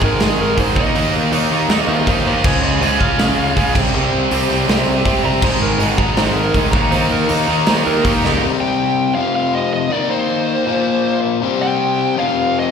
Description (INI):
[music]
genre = punk rock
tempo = 160 BPM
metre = 4/4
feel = straight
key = unclear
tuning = A4 = 441 Hz
[part]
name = smooth overdriven lead guitar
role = melody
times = 0.0-12.7 s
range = G4 to Bb5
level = -21 LUFS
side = right 2 dB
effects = slapback echo, tape echo
[part]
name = crunchy overdriven guitar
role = riff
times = 0.0-12.7 s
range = F2 to Eb4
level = -19 LUFS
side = left 9 dB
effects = slapback echo
[part]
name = overdriven electric guitar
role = riff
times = 0.0-8.4 s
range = Ab2 to Eb4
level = -19 LUFS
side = right 11 dB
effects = slapback echo
[part]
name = modern bright picked electric bass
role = bass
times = 0.0-8.4 s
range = Ab1 to Eb2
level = -21 LUFS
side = equal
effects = none
[part]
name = big rock drum kit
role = drums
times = 0.0-8.3 s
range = crash cymbal, hi-hat, kick drum, snare drum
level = -20 LUFS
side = equal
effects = none
[sound]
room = light reverb, small room ambience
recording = live gig heard through the venue's PA, recital hall reverb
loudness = -14 LUFS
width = side -7 dB against mid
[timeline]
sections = 0.0-8.4 A section; 8.4-12.7 B section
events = half time 0.0-8.4; lead electric guitar solo 0.0-8.4; drum fill 8.2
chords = 0.0 Ab5; 0.8 Eb5; 2.4 Db; 3.8 C5; 5.4 Ab5; 6.7 Eb; 8.4 C5; 9.2 F5; 9.9 Eb5; 10.7 Bb5; 11.4 C5; 12.2 F5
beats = 0.20 0.58 | 0.95 1.32 1.70 2.07 | 2.44 2.82 3.19 3.56 | 3.94 4.31 4.68 5.06 | 5.43 5.81 6.18 6.55 | 6.93 7.30 7.67 8.05 | 8.42 8.80 9.17 9.55 | 9.92 10.29 10.67 11.04 | 11.42 11.79 12.17 12.54